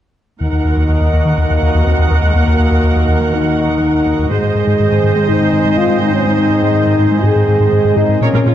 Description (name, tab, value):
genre	cinematic, hybrid orchestral and electronic film score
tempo	123 BPM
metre	4/4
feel	straight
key	Eb dorian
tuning	A4 = 439 Hz
part	clear studio viola section	accompaniment	0.4-8.5 s	Db4 to Gb5	-20 LUFS	right 3 dB	none
part	chorused pulse-width pad	sustained chords	0.4-8.5 s	Eb3 to Eb5	-21 LUFS	left 1 dB	lush chorus
part	mellow French horn section	sustained chords	0.4-8.5 s	Ab3 to Ab4	-16 LUFS	left 1 dB	none
part	smooth synth bass	riff	0.4-8.5 s	Eb2 to Ab3	-15 LUFS	left 1 dB	none
part	rich symphonic cello section	bass	0.4-8.5 s	Eb2 to Bb2	-20 LUFS	right 2 dB	none
room	moderate scoring stage reverb, RT60 1.9 s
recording	dark, warm production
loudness	-11 LUFS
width	side -11 dB against mid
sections	0.4-8.5 A section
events	none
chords	0.4 Ebm; 4.3 Ab